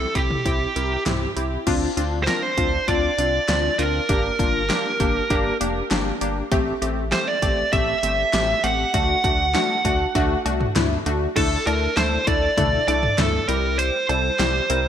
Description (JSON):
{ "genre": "synth-pop", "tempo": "99 BPM", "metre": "4/4", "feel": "straight", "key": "unclear", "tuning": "A4 = 440 Hz", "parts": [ { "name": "fuzz lead guitar", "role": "melody", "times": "0.0-14.9 s", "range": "G4 to F#5", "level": "-22 LUFS", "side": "right 2 dB", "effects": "distortion, digital delay" }, { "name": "funky polysynth comp", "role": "accompaniment", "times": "0.0-14.9 s", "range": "G3 to Bb4", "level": "-24 LUFS", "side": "left 2 dB", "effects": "chorus" }, { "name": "round analog bass", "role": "bass", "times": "0.0-14.9 s", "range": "F1 to D2", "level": "-26 LUFS", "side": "equal", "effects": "none" }, { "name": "pop drum kit", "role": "drums", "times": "0.2-14.8 s", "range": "cowbell, crash cymbal, hi-hat, kick drum, snare drum, toms", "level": "-25 LUFS", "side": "equal", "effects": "gated reverb" } ], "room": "moderate lush hall reverb, RT60 2.1 s", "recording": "bright 1980s-style digital production", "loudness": "-19 LUFS", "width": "side -9 dB against mid", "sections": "0.0-1.7 A section; 1.7-11.4 B section; 11.4-14.9 C section", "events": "none", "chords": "0.0 C; 1.7 Dm7; 4.1 Gm; 6.5 Am7; 8.9 D; 11.4 Dsus2; 13.5 C", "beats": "0.46 1.06 | 1.67 2.27 2.88 3.49 | 4.09 4.70 5.30 5.91 | 6.52 7.12 7.73 8.33 | 8.94 9.55 10.15 10.76 | 11.36 11.97 12.58 13.18 | 13.79 14.39" }